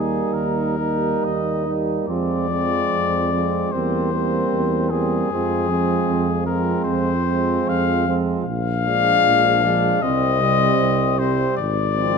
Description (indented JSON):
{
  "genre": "classical, hymn-like piece for brass band",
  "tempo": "76 BPM",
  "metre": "4/4",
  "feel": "uneven beats, rubato",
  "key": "unclear",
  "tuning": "A4 = 441 Hz",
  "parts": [
    { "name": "mellow cornet", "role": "melody", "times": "0.0-12.2 s", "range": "Ab4 to F5", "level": "-22 LUFS", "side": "left 8 dB", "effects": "none" },
    { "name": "mellow flugelhorn", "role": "second line", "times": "0.0-12.2 s", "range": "C4 to Eb4", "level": "-26 LUFS", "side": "right 9 dB", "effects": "none" },
    { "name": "clear euphonium", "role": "accompaniment", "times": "0.0-12.2 s", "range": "F3 to Bb3", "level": "-27 LUFS", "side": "left 2 dB", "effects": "none" },
    { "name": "warm trombone", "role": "accompaniment", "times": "0.0-12.2 s", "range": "C3 to G3", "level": "-27 LUFS", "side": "right 7 dB", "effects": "none" },
    { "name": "mellow tuba", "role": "bass", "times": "0.0-12.2 s", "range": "Ab1 to F2", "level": "-24 LUFS", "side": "right 1 dB", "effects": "none" }
  ],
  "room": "light reverb",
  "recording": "close, detailed microphones",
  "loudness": "-18 LUFS",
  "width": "side -5 dB against mid",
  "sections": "0.0-12.2 A section",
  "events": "none",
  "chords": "0.0 Eb; 2.1 Fm; 3.7 C7/E; 5.3 Fm; 8.5 Bb7; 10.0 Cm; 11.6 Fm7/Ab"
}